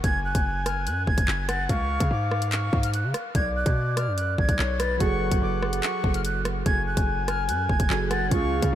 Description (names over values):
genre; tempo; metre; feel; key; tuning
hip hop, drill; 145 BPM; 4/4; half-time; F# harmonic minor; A4 = 440 Hz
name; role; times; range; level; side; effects
jazz flute; melody; 0.0-8.7 s; C#6 to A6; -30 LUFS; right 2 dB; diffuse ambient delay
breathy flute-like synth lead; second line; 0.0-8.8 s; B4 to G#5; -31 LUFS; left 4 dB; chorus, diffuse ambient delay
hard-hitting 808-style bass; bass; 0.0-8.8 s; F#1 to C#3; -27 LUFS; equal; none
drill drum kit; drums; 0.0-8.7 s; handclaps, hi-hat, kick drum, rim click; -27 LUFS; equal; none
warbly lo-fi synth keys; accompaniment; 5.0-8.8 s; C#3 to A4; -29 LUFS; right 5 dB; chorus
room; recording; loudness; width
light reverb, digital ambience; none; -22 LUFS; side -11 dB against mid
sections
0.0-8.8 A section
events
none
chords
0.0 F#sus2; 1.7 C#; 3.3 Bm; 5.0 F#madd9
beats
| 0.04 0.45 0.87 1.28 | 1.69 2.11 2.52 2.94 | 3.35 3.76 4.18 4.59 | 5.00 5.42 5.83 6.25 | 6.66 7.07 7.49 7.90 | 8.31 8.73